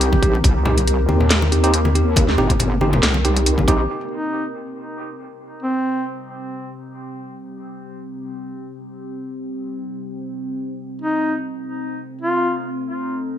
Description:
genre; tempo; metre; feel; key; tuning
deep dubstep; 139 BPM; 4/4; swing 54% on 16ths, half-time; C dorian; A4 = 440 Hz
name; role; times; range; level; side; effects
mellow duduk; melody; 0.0-0.4, 4.1-6.1, 11.0-12.5 s; C4 to G4; -25 LUFS; equal; dub echo
deep dark ambient pad; sustained chords; 0.0-13.4 s; C4 to Bb4; -28 LUFS; left 2 dB; chorus, built-in reverb, vintage 12-bit sampler grit
wobble bass; bass; 0.0-3.9 s; G1 to Eb2; -18 LUFS; equal; chorus, tube saturation
garage drum kit; drums; 0.0-3.8 s; hi-hat, snare drum; -20 LUFS; equal; none
electronic kick drum; drums; 0.1-3.8 s; none; -17 LUFS; equal; none
congas and bongos; percussion; 0.1-3.8 s; none; -24 LUFS; left 2 dB; none
tine electric piano; stabs; 0.2-3.8 s; C4 to G4; -24 LUFS; right 2 dB; medium tremolo, dub echo
room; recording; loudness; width
light reverb, digital ambience; bright 1980s-style digital production; -17 LUFS; side -10 dB against mid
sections
0.0-3.9 A section; 3.9-13.4 B section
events
filter sweep on ambient pad 3.9-13.4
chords
0.0 Cm; 3.9 C5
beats
0.01 | 0.44 0.87 1.30 1.74 | 2.17 2.60 3.03 3.46 | 3.90 4.33 4.76 5.19 | 5.62 6.05 6.49 6.92 | 7.35 7.78 8.21 8.64 | 9.07 9.51 9.94 10.37 | 10.80 11.23 11.66 12.10 | 12.53 12.96

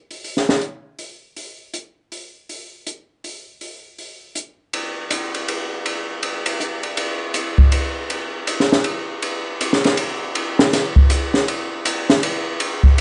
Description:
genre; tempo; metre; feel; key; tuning
jazz; 160 BPM; 3/4; swing 63% on 8ths; none; none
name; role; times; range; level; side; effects
open jazz drum kit; drums; 0.1-13.0 s; hi-hat, kick drum, ride cymbal, snare drum; -20 LUFS; equal; none
room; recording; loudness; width
light reverb; dark, warm production, nothing above 10.3 kHz; -20 LUFS; mono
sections
0.0-4.7 A section; 4.7-13.0 B section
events
none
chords
none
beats
| 0.23 0.61 0.98 | 1.36 1.74 2.11 | 2.49 2.86 3.24 | 3.61 3.98 4.36 | 4.74 5.11 5.48 | 5.86 6.23 6.61 | 6.98 7.36 7.73 | 8.11 8.48 8.85 | 9.23 9.60 9.98 | 10.35 10.72 11.10 | 11.47 11.85 12.22 | 12.60 12.97

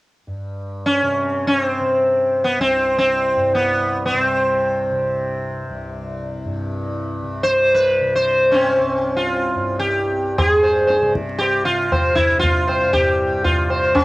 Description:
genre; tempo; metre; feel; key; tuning
indian classical, Hindustani; free time; none; none; unclear; A4 = 440 Hz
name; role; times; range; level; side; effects
tanpura; drone; 0.3-14.0 s; C2 to C3; -27 LUFS; equal; none
sitar; melody; 0.9-14.0 s; B3 to C5; -16 LUFS; equal; cassette tape, plate reverb
tabla; percussion; 10.4-14.0 s; none; -22 LUFS; equal; none
room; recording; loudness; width
moderate booth ambience, RT60 0.2 s; home recording on cassette; -16 LUFS; side -19 dB against mid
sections
0.3-10.4 A section; 10.4-14.0 B section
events
none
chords
none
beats
free time

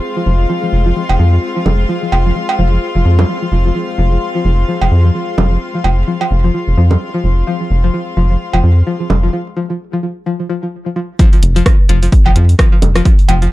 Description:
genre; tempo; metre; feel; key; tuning
minimal techno; 129 BPM; 4/4; swing 57% on 16ths; F minor; A4 = 440 Hz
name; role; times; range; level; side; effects
pulsing gated texture; texture; 0.0-9.3 s; Ab3 to Ab4; -28 LUFS; equal; chorus, built-in reverb, sidechain pumping
rich chamber string section; texture; 0.0-9.3 s; C4 to C6; -22 LUFS; left 4 dB; sidechain pumping
string-like resonator pluck; riff; 0.2-13.5 s; F3; -19 LUFS; left 1 dB; chorus, sidechain pumping, dub echo
rubbery square bass; bass; 0.3-13.5 s; F1 to F2; -11 LUFS; equal; tube saturation, sidechain pumping
cowbell and bongos; percussion; 1.1-9.2, 12.3-13.4 s; none; -18 LUFS; right 4 dB; digital delay
electronic kick drum; drums; 11.2-13.2 s; none; -9 LUFS; equal; overdrive
punchy analog drum machine; drums; 11.2-13.5 s; hi-hat, rim click; -21 LUFS; right 1 dB; overdrive, low-pass filter on hats, low-pass filter on snare, low-pass filter on cymbals
room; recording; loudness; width
light reverb; dark, warm production; -11 LUFS; side -16 dB against mid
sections
0.0-11.2 A section; 11.2-13.5 B section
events
break 9.3-11.2; drop 11.2-13.5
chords
0.0 F5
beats
| 0.03 0.49 0.96 1.43 | 1.89 2.36 2.82 3.29 | 3.75 4.22 4.68 5.15 | 5.61 6.08 6.54 7.01 | 7.47 7.94 8.40 8.87 | 9.33 9.80 10.26 10.73 | 11.19 11.66 12.12 12.59 | 13.05

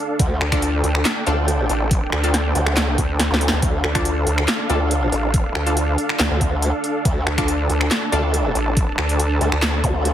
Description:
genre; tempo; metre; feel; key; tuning
heavy wobble dubstep; 140 BPM; 4/4; half-time; D minor; A4 = 439 Hz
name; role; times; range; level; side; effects
supersaw chords; sustained chords; 0.0-10.1 s; D4 to A5; -25 LUFS; right 1 dB; sidechain pumping, low-pass filter
formant-sweep wobble bass; bass; 0.2-10.1 s; D2; -20 LUFS; equal; chorus, overdrive
big-room dance drum kit; drums; 0.2-10.1 s; finger snaps, handclaps, hi-hat, snare drum; -22 LUFS; equal; none
electronic kick drum; drums; 0.2-9.9 s; none; -20 LUFS; equal; overdrive
vowel-sweep wobble bass; bass; 0.4-9.8 s; A1 to D2; -21 LUFS; equal; chorus, overdrive
orchestra-hit-like synth stab; stabs; 0.5-8.2 s; D4 to A4; -26 LUFS; left 1 dB; built-in reverb, ping-pong delay
zap; sound effects; 3.3-3.4, 9.8-9.9 s; none; -28 LUFS; left 1 dB; none
room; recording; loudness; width
light reverb, digital ambience; heavily compressed radio sound, multiband compression; -17 LUFS; side -10 dB against mid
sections
0.0-10.1 A section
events
drum fill 3.2-3.6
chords
0.0 Dm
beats
| 0.20 0.62 1.05 1.48 | 1.91 2.34 2.77 3.19 | 3.62 4.05 4.48 4.91 | 5.34 5.77 6.20 6.62 | 7.05 7.48 7.91 8.34 | 8.77 9.20 9.62 10.05

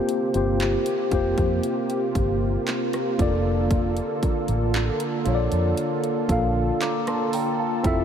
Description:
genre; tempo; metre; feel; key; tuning
contemporary R&B; 58 BPM; 4/4; straight; unclear; A4 = 440 Hz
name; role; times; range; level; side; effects
mellow tine electric piano; accompaniment; 0.0-8.0 s; Bb3 to D6; -24 LUFS; left 2 dB; medium stereo tremolo
warm analog pad; sustained chords; 0.0-8.0 s; C3 to E5; -27 LUFS; right 2 dB; chorus
trap drum kit; drums; 0.1-8.0 s; handclaps, hi-hat, kick drum, rim click; -28 LUFS; equal; overdrive
vintage muted fingered electric bass; bass; 0.3-8.0 s; F1 to F2; -25 LUFS; equal; none
room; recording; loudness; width
moderate huge ambient reverb, RT60 8.2 s; dreamy mix soaked in reverb; -21 LUFS; side -8 dB against mid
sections
0.0-8.0 A section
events
none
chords
0.0 C7sus4; 3.2 Bbmaj7/F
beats
0.60 1.64 2.67 | 3.71 4.74 5.77 6.81 | 7.84

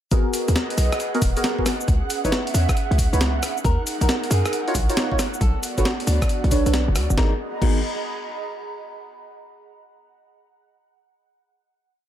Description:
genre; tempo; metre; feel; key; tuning
UK garage, two-step garage; 136 BPM; 4/4; swing 67% on 16ths; G# minor; A4 = 441 Hz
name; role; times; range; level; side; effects
ethereal airy pad; sustained chords; 0.4-7.2 s; F#5; -33 LUFS; right 6 dB; ensemble chorus, built-in reverb, sidechain pumping
deep mellow chord stab; stabs; 0.1-7.8 s; B3 to C#5; -27 LUFS; equal; chorus, phaser, cassette tape, tape echo
short 808-style bass; bass; 0.1-7.8 s; D#1 to F#2; -21 LUFS; equal; none
breakbeat sampler-style drum kit; drums; 0.1-7.7 s; crash cymbal, hi-hat, rim click, shaker, snare drum; -26 LUFS; equal; none
electronic kick drum; drums; 0.1-7.7 s; none; -22 LUFS; equal; none
airy breathy pad; texture; 0.1-8.9 s; B3 to B5; -31 LUFS; right 2 dB; chorus, sidechain pumping
nylon-string guitar; melody; 3.6-7.8 s; D4 to A#4; -30 LUFS; left 2 dB; tape echo
room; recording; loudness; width
digital ambience; none; -19 LUFS; side -11 dB against mid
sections
0.1-7.2 drop; 7.2-8.9 final chord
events
drop 0.1-7.2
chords
0.1 G#m9; 1.9 C#m9; 3.4 D#m9; 5.2 Bm9; 7.2 G#m9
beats
| 0.12 0.56 1.00 1.44 | 1.88 2.32 2.76 3.20 | 3.65 4.09 4.53 4.97 | 5.41 5.85 6.29 6.73 | 7.17 7.62 8.06 8.50

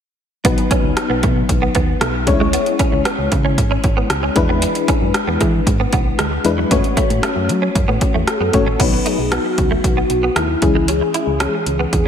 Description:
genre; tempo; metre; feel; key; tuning
1980s-style pop; 115 BPM; 4/4; straight; unclear; A4 = 440 Hz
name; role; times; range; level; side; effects
FM electric piano with tremolo; accompaniment; 0.4-12.1 s; E3 to C#5; -20 LUFS; left 5 dB; none
solid FM bass; bass; 0.4-12.1 s; G#1 to F#3; -21 LUFS; right 1 dB; none
80s electronic pad drums; drums; 0.4-12.0 s; crash cymbal, hi-hat, kick drum, rim click; -18 LUFS; right 1 dB; none
direct-recorded clean electric guitar; riff; 0.5-12.1 s; E3 to E4; -23 LUFS; right 4 dB; ensemble chorus, tape echo
warm velvety synth lead; melody; 8.3-12.1 s; E4 to B4; -20 LUFS; left 1 dB; chorus
room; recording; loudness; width
moderate concert hall reverb, RT60 2.0 s; big arena sound; -14 LUFS; side -8 dB against mid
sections
0.4-8.8 A section; 8.8-12.1 B section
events
none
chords
0.4 B; 2.3 C#m; 4.4 E7; 6.7 F#m; 8.8 B; 10.6 C#m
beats
| 0.45 0.97 1.49 2.02 | 2.54 3.06 3.58 4.10 | 4.62 5.14 5.67 6.19 | 6.71 7.23 7.75 8.28 | 8.80 9.32 9.84 10.36 | 10.88 11.41 11.93

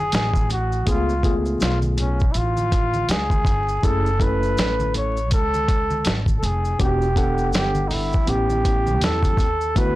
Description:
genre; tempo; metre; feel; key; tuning
hip hop, jazz-hop; 81 BPM; 4/4; swing 60% on 16ths; unclear; A4 = 441 Hz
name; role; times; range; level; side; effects
trumpet with bucket mute; melody; 0.0-10.0 s; C#4 to C#5; -24 LUFS; equal; analog delay
upright bass; bass; 0.0-10.0 s; E1 to E2; -24 LUFS; equal; none
dusty soul sampler-style drum kit; drums; 0.1-10.0 s; hi-hat, kick drum, snare drum; -21 LUFS; equal; none
maracas and congas; percussion; 0.1-10.0 s; none; -33 LUFS; right 1 dB; none
tine electric piano; accompaniment; 0.9-10.0 s; A3 to F#5; -26 LUFS; left 2 dB; medium stereo tremolo
room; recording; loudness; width
light reverb; blown-out, overdriven recording, vinyl crackle, overdrive; -18 LUFS; side -16 dB against mid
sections
0.0-10.0 A section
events
none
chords
0.0 B7(no3) (rootless); 0.9 C#7b13; 3.8 F#m9; 6.8 Em7; 8.3 A7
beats
0.13 | 0.87 1.61 2.35 3.09 | 3.83 4.57 5.31 6.05 | 6.79 7.54 8.28 9.02 | 9.76

